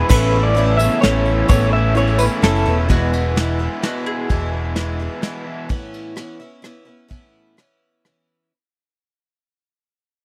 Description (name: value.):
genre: folk rock and heartland rock.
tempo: 128 BPM.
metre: 3/4.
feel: straight.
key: A major.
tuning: A4 = 439 Hz.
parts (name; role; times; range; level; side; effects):
electric guitar through a small old amp; melody; 0.0-2.8 s; A4 to E5; -22 LUFS; equal; tremolo.
barky reed electric piano; accompaniment; 0.0-2.9 s; B3 to C#5; -29 LUFS; equal; none.
picked twelve-string acoustic guitar; accompaniment; 0.0-8.5 s; E2 to E4; -29 LUFS; equal; none.
musette accordion; sustained chords; 0.0-2.9 s; C#3 to A4; -32 LUFS; equal; none.
raw garage guitar; riff; 0.0-5.7 s; E2 to E4; -26 LUFS; equal; overdrive.
picked electric bass; bass; 0.0-5.1 s; E1 to A1; -21 LUFS; equal; none.
soft brush drum kit; drums; 0.1-8.2 s; crash cymbal, hi-hat, kick drum, ride cymbal, rim click, snare drum; -20 LUFS; equal; none.
tambourine; percussion; 0.1-2.7 s; none; -36 LUFS; equal; none.
mandolin; second line; 2.9-5.4 s; F#4 to B4; -33 LUFS; equal; none.
room: little or no reverb.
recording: dry, close 1970s-style studio recording.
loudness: -18 LUFS.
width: mono.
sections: 0.0-2.9 A section; 2.9-8.5 B section.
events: fade-out 2.9-8.5.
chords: 0.1 Aadd9; 2.9 E; 5.7 Aadd9.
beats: | 0.11 0.57 1.04 | 1.50 1.97 2.43 | 2.90 3.36 3.83 | 4.30 4.76 5.23 | 5.70 6.17 6.63 | 7.10 7.57 8.04.